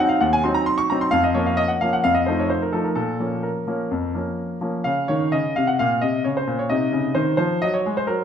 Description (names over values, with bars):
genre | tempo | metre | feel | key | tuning
classical-period piano sonatina | 130 BPM | 4/4 | rubato | Bb minor | A4 = 440 Hz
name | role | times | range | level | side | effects
clear grand piano | solo | 0.0-8.2 s | Eb2 to Db6 | -19 LUFS | equal | none
room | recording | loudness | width
moderate recital hall reverb, RT60 1.4 s | minimal, uncompressed stereo recording | -19 LUFS | side -8 dB against mid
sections
0.0-4.9 A section; 4.9-8.2 A section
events
none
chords
0.0 Cdim/Eb; 1.1 Bbm/F; 2.0 F7; 3.0 Bbm; 6.7 Cdim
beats
0.20 0.66 | 1.12 1.58 2.03 2.50 | 2.97 3.44 3.92 4.39 | 4.86 5.32 5.78 6.24 | 6.70 7.15 7.61 8.08